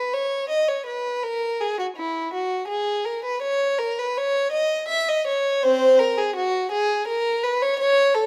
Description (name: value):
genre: classical, baroque-style suite movement for unaccompanied violin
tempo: 55 BPM (dotted quarters)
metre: 6/8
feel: rubato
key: B major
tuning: A4 = 440 Hz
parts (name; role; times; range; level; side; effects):
- warm violin; solo; 0.0-8.3 s; C4 to E5; -23 LUFS; equal; none
room: moderate stone room reverb, RT60 1.4 s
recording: none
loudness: -23 LUFS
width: mono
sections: 0.0-8.3 A section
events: none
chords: none